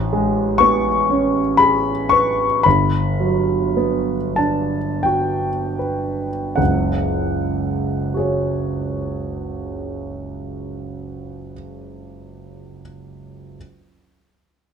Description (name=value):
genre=classical, impressionist solo piano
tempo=37-66 BPM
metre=3/4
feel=rubato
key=unclear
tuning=A4 = 440 Hz
part: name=warm concert grand piano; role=solo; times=0.0-13.6 s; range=F#1 to C#6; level=-17 LUFS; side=equal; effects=none
room=light reverb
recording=dark, warm production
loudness=-17 LUFS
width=side -7 dB against mid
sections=0.0-6.6 A section; 6.6-11.3 B section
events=slowing down 0.0-6.6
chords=0.0 Amaj9; 2.6 Gmaj7; 6.6 F#sus2